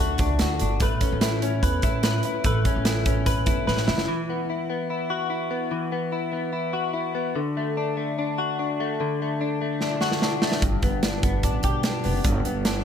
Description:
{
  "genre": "jangly indie pop",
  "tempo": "147 BPM",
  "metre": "4/4",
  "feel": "straight",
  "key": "D major",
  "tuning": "A4 = 440 Hz",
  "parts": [
    { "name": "direct-recorded clean electric guitar", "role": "arpeggios", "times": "0.0-12.8 s", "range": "G2 to B4", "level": "-25 LUFS", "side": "left 3 dB", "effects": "analog chorus" },
    { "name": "upright bass", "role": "bass", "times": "0.0-4.1, 10.6-12.8 s", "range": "F#1 to A2", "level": "-26 LUFS", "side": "right 1 dB", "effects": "none" },
    { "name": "big rock drum kit", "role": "drums", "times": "0.2-4.1, 9.8-12.7 s", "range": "hi-hat, kick drum, snare drum", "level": "-24 LUFS", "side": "right 1 dB", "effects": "none" }
  ],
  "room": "little or no reverb",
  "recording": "none",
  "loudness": "-22 LUFS",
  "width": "side -8 dB against mid",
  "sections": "0.0-4.1 A section; 4.1-12.8 B section",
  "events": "drum fill 3.7-4.1, 9.8-10.6",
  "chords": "0.0 D; 0.8 Aadd9; 4.1 Esus2; 7.4 D; 10.6 G"
}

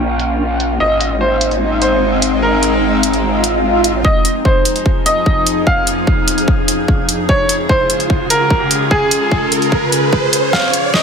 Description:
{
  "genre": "heavy wobble dubstep",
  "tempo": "148 BPM",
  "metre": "4/4",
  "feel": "half-time",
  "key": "F minor",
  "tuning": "A4 = 441 Hz",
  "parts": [
    { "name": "clear grand piano", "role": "melody", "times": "0.0-11.0 s", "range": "Ab4 to G5", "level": "-17 LUFS", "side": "equal", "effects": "low-pass filter, ping-pong delay" },
    { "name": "evolving wavetable pad", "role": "sustained chords", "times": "0.0-11.0 s", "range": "Db2 to Bb4", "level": "-18 LUFS", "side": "left 1 dB", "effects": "ensemble chorus, built-in reverb, sidechain pumping" },
    { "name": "growl bass", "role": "bass", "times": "0.0-4.0 s", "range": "Ab1 to Bb1", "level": "-18 LUFS", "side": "equal", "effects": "chorus, overdrive" },
    { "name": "dubstep drum kit", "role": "drums", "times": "0.2-11.0 s", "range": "hi-hat, snare drum", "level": "-17 LUFS", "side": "right 1 dB", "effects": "overdrive" },
    { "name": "swell and riser", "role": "sound effects", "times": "3.3-11.0 s", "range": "none", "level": "-19 LUFS", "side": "right 2 dB", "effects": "none" },
    { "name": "electronic kick drum", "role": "drums", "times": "4.0-11.0 s", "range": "none", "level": "-16 LUFS", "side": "equal", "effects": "overdrive" }
  ],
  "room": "light reverb, digital ambience",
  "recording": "high-pass filter, low-pass filter",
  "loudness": "-12 LUFS",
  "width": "side -6 dB against mid",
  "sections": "0.0-4.0 A section; 4.0-11.0 B section",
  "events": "filter sweep 0.0-4.0, 4.0-11.0; swell 3.3-4.0; build-up 4.0-11.0; riser 4.0-11.0; filter sweep on grand piano 4.0-11.0; drum fill 10.5-11.0",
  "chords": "0.0 Bbm; 0.8 Ab; 4.0 Fm7; 7.3 Db"
}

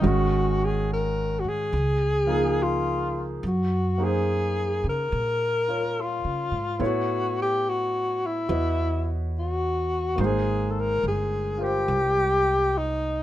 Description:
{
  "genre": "jazz ballad",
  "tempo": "71 BPM",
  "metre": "4/4",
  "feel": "swing 67% on 8ths",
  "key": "unclear",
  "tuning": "A4 = 439 Hz",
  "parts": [
    { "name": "mellow alto saxophone", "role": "melody", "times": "0.0-13.2 s", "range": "Eb4 to Bb4", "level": "-25 LUFS", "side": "left 2 dB", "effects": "none" },
    { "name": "clear grand piano", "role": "accompaniment", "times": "0.0-13.2 s", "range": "Eb3 to Eb5", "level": "-29 LUFS", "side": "right 1 dB", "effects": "none" },
    { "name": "upright bass", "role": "bass", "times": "0.0-13.2 s", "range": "G1 to Db3", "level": "-28 LUFS", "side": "right 1 dB", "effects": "none" }
  ],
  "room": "light reverb",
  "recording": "minimal, uncompressed stereo recording",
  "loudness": "-22 LUFS",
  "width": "side -13 dB against mid",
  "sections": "0.0-13.2 A section",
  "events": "none",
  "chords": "0.0 Ab5; 1.7 Db; 3.4 Gbmaj9; 6.8 A69; 10.2 Abmaj9"
}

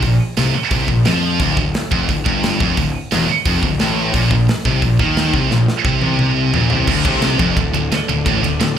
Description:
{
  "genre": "heavy metal",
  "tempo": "175 BPM",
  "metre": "4/4",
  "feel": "straight",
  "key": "D phrygian",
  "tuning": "A4 = 439 Hz",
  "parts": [
    { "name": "heavy high-gain guitar", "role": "riff", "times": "0.0-8.7 s", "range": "D2 to F3", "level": "-19 LUFS", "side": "right 9 dB", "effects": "distortion" },
    { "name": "sludgy distorted guitar", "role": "riff", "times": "0.0-8.7 s", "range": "D2 to F3", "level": "-18 LUFS", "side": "left 4 dB", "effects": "overdrive, slapback echo" },
    { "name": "fuzz picked electric bass", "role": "bass", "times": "0.0-8.8 s", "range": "D1 to F2", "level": "-22 LUFS", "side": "right 1 dB", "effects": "overdrive" },
    { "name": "tight metal drum kit", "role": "drums", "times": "0.0-8.7 s", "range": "crash cymbal, hi-hat, kick drum, ride cymbal, snare drum, toms", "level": "-20 LUFS", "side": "equal", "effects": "none" },
    { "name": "chamber organ, principal chorus", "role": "sustained chords", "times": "6.9-8.8 s", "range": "D3 to D4", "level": "-26 LUFS", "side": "right 1 dB", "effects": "none" }
  ],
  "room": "little or no reverb",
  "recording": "live gig heard through the venue's PA, club reverb",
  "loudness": "-14 LUFS",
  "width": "side -9 dB against mid",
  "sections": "0.0-6.9 A section; 6.9-8.8 B section",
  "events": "drum fill 5.5-6.9",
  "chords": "0.0 Bb5; 1.4 Dm; 4.1 Bbsus24; 6.9 Dm"
}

